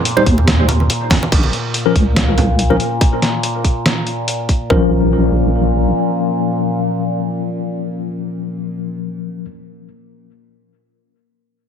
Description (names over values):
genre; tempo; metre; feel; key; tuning
deep dubstep; 142 BPM; 4/4; swing 54% on 16ths, half-time; Bb minor; A4 = 440 Hz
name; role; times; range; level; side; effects
overtone-sweeping drone; sustained chords; 0.0-8.9 s; Bb2; -22 LUFS; equal; chorus, built-in reverb
trip hop sampler-style drum kit; drums; 0.1-4.6 s; crash cymbal, hi-hat, snare drum; -18 LUFS; equal; none
tine electric piano; stabs; 0.2-9.4 s; F3 to C5; -18 LUFS; left 4 dB; overdrive, medium stereo tremolo, dub echo
congas; percussion; 0.2-2.8 s; none; -22 LUFS; right 3 dB; dub echo
deep soft wobble bass; bass; 0.3-5.9 s; Bb1 to Eb2; -15 LUFS; equal; chorus
electronic kick drum; drums; 0.3-4.8 s; none; -14 LUFS; equal; none
room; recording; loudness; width
light reverb; none; -14 LUFS; side -8 dB against mid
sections
0.0-1.3 A section; 1.3-4.7 B section; 4.7-8.1 C section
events
drop 0.0-1.3; drum fill 1.1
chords
0.0 N.C.; 1.3 Bbm